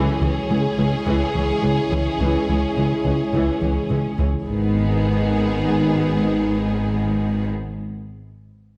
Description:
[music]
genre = cinematic, hybrid orchestral and electronic film score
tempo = 106 BPM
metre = 4/4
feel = straight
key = G# minor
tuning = A4 = 442 Hz
[part]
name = warm symphonic violin section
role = melody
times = 0.0-7.5 s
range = G#4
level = -32 LUFS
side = equal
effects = none
[part]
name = clear symphonic violin section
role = second line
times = 0.0-7.5 s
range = B3 to C#4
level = -32 LUFS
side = equal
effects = none
[part]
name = rich symphonic viola section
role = accompaniment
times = 0.0-7.5 s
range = D#3 to E3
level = -32 LUFS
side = equal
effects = none
[part]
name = dark French horn section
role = sustained chords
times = 0.0-7.5 s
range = G#3 to E4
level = -30 LUFS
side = equal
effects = none
[part]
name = dark analog pad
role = sustained chords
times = 0.0-7.5 s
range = C#3 to B4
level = -29 LUFS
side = equal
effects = chorus
[part]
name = soft round pluck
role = arpeggios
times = 0.0-4.3 s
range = C#3 to G#3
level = -34 LUFS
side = equal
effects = none
[part]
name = smooth gliding synth bass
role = riff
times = 0.0-4.4 s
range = C#2 to C#3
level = -27 LUFS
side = equal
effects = none
[part]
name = clear symphonic cello section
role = bass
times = 0.2-7.5 s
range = C#2 to G#2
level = -28 LUFS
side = equal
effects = none
[part]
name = rich symphonic double bass section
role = bass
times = 0.2-7.5 s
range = G#1 to C#2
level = -29 LUFS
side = equal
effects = none
[part]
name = taiko ensemble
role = drums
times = 0.8-1.0 s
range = none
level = -38 LUFS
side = equal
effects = none
[sound]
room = moderate scoring stage reverb, RT60 1.6 s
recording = none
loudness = -21 LUFS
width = mono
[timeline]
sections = 0.0-4.5 A section; 4.5-6.7 B section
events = none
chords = 0.0 C#m; 4.5 G#m

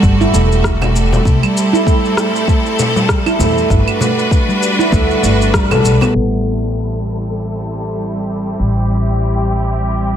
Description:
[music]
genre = organic downtempo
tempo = 98 BPM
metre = 4/4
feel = swing 57% on 16ths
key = A dorian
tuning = A4 = 440 Hz
[part]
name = bright studio string section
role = sustained chords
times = 0.0-10.2 s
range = G3 to B4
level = -19 LUFS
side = equal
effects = sidechain pumping, low-pass filter
[part]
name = upright bass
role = bass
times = 0.0-10.2 s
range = E1 to E2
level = -16 LUFS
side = equal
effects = sidechain pumping
[part]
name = electronic kick drum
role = drums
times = 0.0-5.7 s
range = none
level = -15 LUFS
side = equal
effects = none
[part]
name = electronic shaker, rim click and claves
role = drums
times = 0.0-6.1 s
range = none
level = -21 LUFS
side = equal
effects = low-pass filter on perc, low-pass filter on snare
[part]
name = handpan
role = arpeggios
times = 0.2-6.1 s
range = G3 to A4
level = -16 LUFS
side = right 2 dB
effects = tape echo
[part]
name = frame drum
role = percussion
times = 0.8-6.1 s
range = none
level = -21 LUFS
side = left 2 dB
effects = none
[part]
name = drifting glass-harmonics texture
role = texture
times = 7.6-10.2 s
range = G4 to G5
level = -27 LUFS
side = left 3 dB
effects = chorus, built-in reverb
[sound]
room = light reverb, studio ambience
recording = low-pass filter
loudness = -12 LUFS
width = side -9 dB against mid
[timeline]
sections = 0.0-6.2 A section; 6.2-10.2 B section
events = band accent 5.5-5.8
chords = 0.0 Am7; 1.3 C6; 3.7 Gmaj7; 6.2 Am7

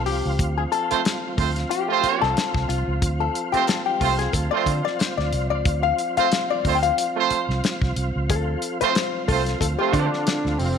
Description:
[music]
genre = funk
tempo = 91 BPM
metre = 4/4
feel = swing 56% on 16ths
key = D minor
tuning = A4 = 441 Hz
[part]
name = hollow-body jazz guitar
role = accompaniment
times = 0.0-10.8 s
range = F4 to G5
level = -25 LUFS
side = left 10 dB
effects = wah
[part]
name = tonewheel organ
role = sustained chords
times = 0.0-10.8 s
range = F3 to F4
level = -30 LUFS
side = right 2 dB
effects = chorus vibrato, fast rotary speaker
[part]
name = vintage muted fingered electric bass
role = bass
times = 0.0-10.7 s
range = F1 to D3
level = -25 LUFS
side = right 1 dB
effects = none
[part]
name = damped 70s drum kit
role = drums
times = 0.1-10.8 s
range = hi-hat, kick drum, snare drum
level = -26 LUFS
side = left 2 dB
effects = none
[part]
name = warm horn section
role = second line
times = 0.9-10.1 s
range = A3 to C5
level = -24 LUFS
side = right 11 dB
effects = none
[part]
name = fat analog lead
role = melody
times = 9.9-10.8 s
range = C4 to D4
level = -24 LUFS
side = right 1 dB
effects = chorus
[sound]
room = moderate echo chamber reverb, RT60 1.9 s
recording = 1960s-style stereo with parts hard left and right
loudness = -20 LUFS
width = side -7 dB against mid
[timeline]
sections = 0.0-10.8 A section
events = hollow-body jazz guitar solo 0.0-10.8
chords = 0.0 Dm7

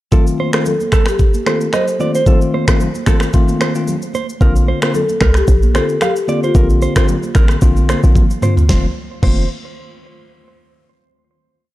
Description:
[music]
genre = afrobeats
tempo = 112 BPM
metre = 4/4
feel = swing 55% on 16ths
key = F mixolydian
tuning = A4 = 442 Hz
[part]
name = bell-like tine electric piano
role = accompaniment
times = 0.1-9.4 s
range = D3 to F4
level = -20 LUFS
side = left 4 dB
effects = none
[part]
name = mellow electric guitar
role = riff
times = 0.1-9.5 s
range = A4 to F5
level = -24 LUFS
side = right 6 dB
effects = tape echo
[part]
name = afro-pop drum kit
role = drums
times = 0.1-9.4 s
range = crash cymbal, finger snaps, kick drum, rim click, shaker, snare drum, toms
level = -15 LUFS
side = equal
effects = none
[part]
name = congas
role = percussion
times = 0.1-9.5 s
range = none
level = -26 LUFS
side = right 7 dB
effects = none
[part]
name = marimba with soft mallets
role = melody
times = 0.7-7.5 s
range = F4 to C5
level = -20 LUFS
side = left 1 dB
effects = tape echo
[part]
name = short 808-style bass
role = bass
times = 4.4-9.5 s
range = F1 to C2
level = -13 LUFS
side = equal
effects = none
[sound]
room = digital ambience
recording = dark, warm production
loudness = -12 LUFS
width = side -16 dB against mid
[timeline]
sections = 0.1-8.7 verse; 8.7-10.8 final chord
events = drum fill 8.2-8.7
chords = 0.1 F7; 4.4 Bbadd9; 8.7 F7

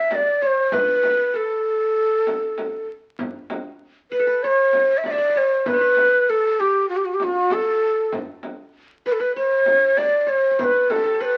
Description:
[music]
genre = Arabic maqam ensemble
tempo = 97 BPM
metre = 4/4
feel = straight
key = unclear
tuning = A4 = 441 Hz
[part]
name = breathy ney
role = melody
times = 0.0-11.4 s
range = F4+44c to E5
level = -20 LUFS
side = equal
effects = none
[part]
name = qanun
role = second line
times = 0.0-11.4 s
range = F#4-50c to F#5-50c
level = -32 LUFS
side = equal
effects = none
[part]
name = frame drum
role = percussion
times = 0.1-11.0 s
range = none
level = -34 LUFS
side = equal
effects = none
[sound]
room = moderate studio reverb, RT60 0.8 s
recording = very old 78 rpm record, vinyl crackle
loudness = -20 LUFS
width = mono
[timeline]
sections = 0.0-11.4 A section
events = none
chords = none

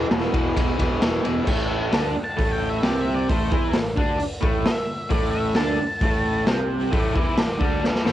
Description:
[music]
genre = garage rock duo or trio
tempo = 132 BPM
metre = 4/4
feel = straight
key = A minor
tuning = A4 = 440 Hz
[part]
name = raw garage guitar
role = riff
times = 0.0-8.1 s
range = E2 to E4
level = -24 LUFS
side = right 1 dB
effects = overdrive, cassette tape
[part]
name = fuzz picked electric bass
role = bass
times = 0.0-8.1 s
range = E1 to E2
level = -30 LUFS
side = equal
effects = overdrive
[part]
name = raw garage drum kit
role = drums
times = 0.1-8.1 s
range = crash cymbal, hi-hat, kick drum, ride cymbal, snare drum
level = -23 LUFS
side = equal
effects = cassette tape
[part]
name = octave-fuzz lead guitar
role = melody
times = 2.2-8.1 s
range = C5 to A5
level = -30 LUFS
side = equal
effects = distortion, cassette tape
[sound]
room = small room ambience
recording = home recording on cassette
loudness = -20 LUFS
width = side -13 dB against mid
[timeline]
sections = 0.0-1.5 A section; 1.5-8.1 B section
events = lead electric guitar solo 1.5-8.1; drum fill 7.8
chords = 0.0 E5; 1.5 Am

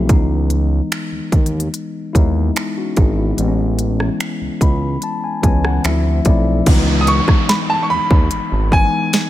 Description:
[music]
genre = contemporary R&B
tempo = 73 BPM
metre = 4/4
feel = straight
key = C# minor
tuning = A4 = 440 Hz
[part]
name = mellow tine electric piano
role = accompaniment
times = 0.0-9.3 s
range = D#3 to B5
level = -20 LUFS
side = left 3 dB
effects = none
[part]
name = smooth gliding synth bass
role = bass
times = 0.0-8.9 s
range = G#1 to D#2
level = -18 LUFS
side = equal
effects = none
[part]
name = trap drum kit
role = drums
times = 0.1-9.3 s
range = crash cymbal, finger snaps, hi-hat, kick drum, rim click, snare drum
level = -16 LUFS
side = equal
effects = none
[part]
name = downlifter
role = sound effects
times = 6.7-9.3 s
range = none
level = -25 LUFS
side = right 2 dB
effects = none
[part]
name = clear concert grand piano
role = melody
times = 7.0-9.3 s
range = G#5 to D#6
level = -18 LUFS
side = right 1 dB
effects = ping-pong delay
[sound]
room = little or no reverb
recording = none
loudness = -14 LUFS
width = side -14 dB against mid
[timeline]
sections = 0.0-6.7 A section; 6.7-9.3 B section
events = tine electric piano fill 4.2-6.7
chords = 0.1 C#m9; 3.4 Amaj7; 5.8 Dm9; 6.7 C#m7

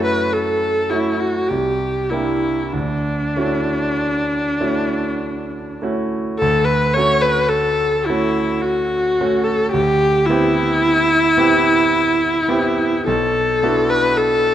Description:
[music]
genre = classical, impressionist duo for viola and grand piano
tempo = 48-56 BPM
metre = 3/4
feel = rubato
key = D major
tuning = A4 = 440 Hz
[part]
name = warm viola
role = melody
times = 0.0-14.5 s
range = D4 to C#5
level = -17 LUFS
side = left 1 dB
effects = none
[part]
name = clear concert grand piano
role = accompaniment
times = 0.0-14.5 s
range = B1 to G4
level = -20 LUFS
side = right 2 dB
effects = none
[sound]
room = moderate scoring stage reverb, RT60 1.6 s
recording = dark, warm production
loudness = -15 LUFS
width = side -11 dB against mid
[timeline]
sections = 0.0-6.4 A section; 6.4-14.5 A section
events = none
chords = 0.0 F#m7; 1.5 C9; 2.7 Dmaj9; 6.4 Dmaj7; 9.7 Cmaj7/D; 13.1 Bmadd11

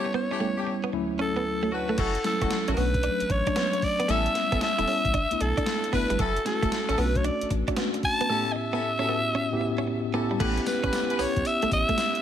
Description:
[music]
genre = R&B, new jack swing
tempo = 114 BPM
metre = 4/4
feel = swing 66% on 16ths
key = unclear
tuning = A4 = 440 Hz
[part]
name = raspy alto saxophone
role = melody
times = 0.0-12.2 s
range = A4 to A5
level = -27 LUFS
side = equal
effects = ping-pong delay
[part]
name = mellow tine electric piano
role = accompaniment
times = 0.0-12.2 s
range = D2 to C#5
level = -30 LUFS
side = left 2 dB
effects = medium stereo tremolo
[part]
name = warm horn section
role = stabs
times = 0.0-11.3 s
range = A3 to B4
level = -34 LUFS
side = left 3 dB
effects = none
[part]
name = direct-recorded clean electric guitar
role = riff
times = 0.1-12.0 s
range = F#3 to E4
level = -32 LUFS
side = right 5 dB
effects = wide subtle chorus
[part]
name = saturated sub bass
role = bass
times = 2.0-11.8 s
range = E1 to B1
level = -29 LUFS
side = equal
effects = none
[part]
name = gated 80s digital drum machine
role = drums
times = 2.0-12.2 s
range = crash cymbal, hi-hat, kick drum, snare drum, tambourine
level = -31 LUFS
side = equal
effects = gated reverb, gated reverb snare, overdrive
[sound]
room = light reverb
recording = none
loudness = -23 LUFS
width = side -10 dB against mid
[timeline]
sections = 0.0-2.0 A section; 2.0-10.4 B section; 10.4-12.2 C section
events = break 0.0-2.0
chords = 0.0 A7; 0.9 Dmaj7; 2.0 F#m7; 2.8 Bm7; 4.1 A7; 5.1 G6; 6.2 F#m7; 7.0 Bm7; 8.3 A7; 10.4 A9

